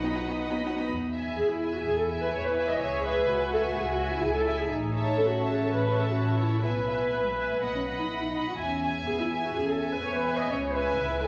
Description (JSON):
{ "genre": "quick classical-period movement for string orchestra", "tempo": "125 BPM", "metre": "4/4", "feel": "straight", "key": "E major", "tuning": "A4 = 440 Hz", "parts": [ { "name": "dark symphonic violin section", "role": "melody", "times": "0.0-11.3 s", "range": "D#5 to B5", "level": "-40 LUFS", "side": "equal", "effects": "none" }, { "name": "clear studio violin section", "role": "second line", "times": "0.0-11.3 s", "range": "B4 to B5", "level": "-36 LUFS", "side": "equal", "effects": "none" }, { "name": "dark studio viola section", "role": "accompaniment", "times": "0.0-11.3 s", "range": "B3 to D#5", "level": "-31 LUFS", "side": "equal", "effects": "none" }, { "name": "dark studio cello section", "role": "bass", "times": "0.0-11.3 s", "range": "G#3 to G#4", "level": "-36 LUFS", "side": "equal", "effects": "none" }, { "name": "dark studio double bass section", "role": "bass", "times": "0.0-11.3 s", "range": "A1 to E2", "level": "-36 LUFS", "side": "equal", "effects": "none" } ], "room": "wet scoring stage reverb, RT60 1.9 s", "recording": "none", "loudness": "-28 LUFS", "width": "mono", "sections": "0.9-11.3 A section", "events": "none", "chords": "0.0 B; 0.9 E; 2.8 C#m; 4.7 A; 6.6 E/B; 7.6 B; 8.6 E; 10.5 C#m", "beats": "0.41 | 0.90 1.38 1.85 2.33 | 2.81 3.28 3.75 4.22 | 4.69 5.16 5.63 6.11 | 6.62 7.12 7.61 8.09 | 8.58 9.07 9.55 10.03 | 10.51 10.99" }